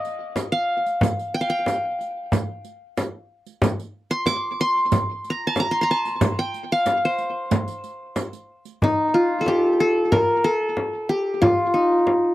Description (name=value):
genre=Turkish makam ensemble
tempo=92 BPM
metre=4/4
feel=straight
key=unclear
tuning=A4 = 441 Hz
part: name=qanun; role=melody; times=0.0-12.3 s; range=Eb4 to D6-30c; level=-20 LUFS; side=equal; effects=tape echo
part: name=riq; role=percussion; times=0.0-8.7 s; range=none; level=-31 LUFS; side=right 14 dB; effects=none
part: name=frame drum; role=percussion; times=0.4-12.2 s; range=none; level=-23 LUFS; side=equal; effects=none
room=little or no reverb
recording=dry, close 1970s-style studio recording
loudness=-20 LUFS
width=side -16 dB against mid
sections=0.0-8.8 A section; 8.8-12.3 B section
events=none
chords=none